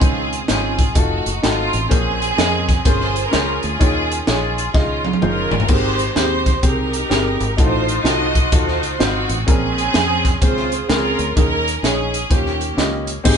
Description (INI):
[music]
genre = uptempo gospel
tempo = 127 BPM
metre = 4/4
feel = swing 63% on 8ths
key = unclear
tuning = A4 = 440 Hz
[part]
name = clear studio string section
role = melody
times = 0.0-13.4 s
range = Ab3 to Eb5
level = -21 LUFS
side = right 2 dB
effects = none
[part]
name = warm upright piano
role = accompaniment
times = 0.0-13.4 s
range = Ab2 to Eb5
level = -23 LUFS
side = left 2 dB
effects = none
[part]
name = fingered electric bass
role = bass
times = 0.0-13.4 s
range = F1 to F2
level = -24 LUFS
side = equal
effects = none
[part]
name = crisp fusion drum kit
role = drums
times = 0.0-13.4 s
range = crash cymbal, hi-hat, kick drum, snare drum, toms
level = -18 LUFS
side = equal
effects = none
[sound]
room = moderate studio reverb, RT60 0.7 s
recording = band playing live in one room, nothing above 10.7 kHz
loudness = -15 LUFS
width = side -7 dB against mid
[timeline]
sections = 0.0-13.3 A section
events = drum fill 4.7-5.7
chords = 0.0 Dbmaj9; 1.0 F7b9; 1.9 Bbm9; 3.8 Eb9sus4; 5.7 Abmaj9; 7.6 F7b9/A; 9.5 Bbm9; 11.4 Eb7sus4; 12.3 Eb13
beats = | 0.01 0.49 0.96 1.43 | 1.91 2.38 2.85 3.33 | 3.80 4.27 4.75 5.22 | 5.69 6.16 6.64 7.11 | 7.58 8.06 8.53 9.00 | 9.47 9.95 10.42 10.89 | 11.37 11.84 12.31 12.78 | 13.25